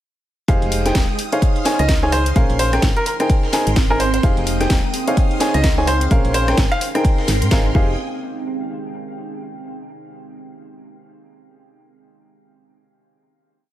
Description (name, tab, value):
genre	piano house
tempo	128 BPM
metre	4/4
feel	swing 59% on 16ths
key	unclear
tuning	A4 = 439 Hz
part	string machine, violins	sustained chords	0.5-8.0 s	Ab3 to Eb6	-29 LUFS	equal	ensemble chorus, sidechain pumping
part	clear upright piano	riff	0.5-7.9 s	Db4 to Ab5	-21 LUFS	equal	sidechain pumping, dub echo
part	solid FM bass	bass	0.5-8.0 s	Eb1 to Ab2	-20 LUFS	equal	sidechain pumping
part	dusty soul sampler-style drum kit	drums	0.5-7.6 s	hi-hat, snare drum	-35 LUFS	right 2 dB	none
part	electronic kick drum	drums	0.5-7.9 s	none	-17 LUFS	equal	none
part	house drum kit	drums	0.5-7.6 s	hi-hat, rim click, snare drum	-24 LUFS	left 1 dB	none
part	deep dark ambient pad	texture	1.2-9.8 s	C4 to G5	-28 LUFS	right 3 dB	chorus, built-in reverb, sidechain pumping
part	clear concert grand piano	melody	1.8-6.9 s	Bb4 to F5	-24 LUFS	right 1 dB	dub echo
room	digital ambience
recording	none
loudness	-15 LUFS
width	side -13 dB against mid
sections	0.5-8.0 drop; 8.0-9.9 final note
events	drop 0.5-8.0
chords	0.5 Fm9; 1.2 Dbmaj9; 2.4 Bbm9; 3.1 Abmaj9; 4.2 Fm9; 4.9 Dbmaj9; 6.1 Bbm9; 6.8 Abmaj9; 7.7 Fm9; 8.0 Ebadd11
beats	| 0.48 0.95 1.42 1.89 | 2.36 2.83 3.30 3.77 | 4.23 4.70 5.17 5.64 | 6.11 6.58 7.05 7.51 | 7.98 8.45 8.92 9.39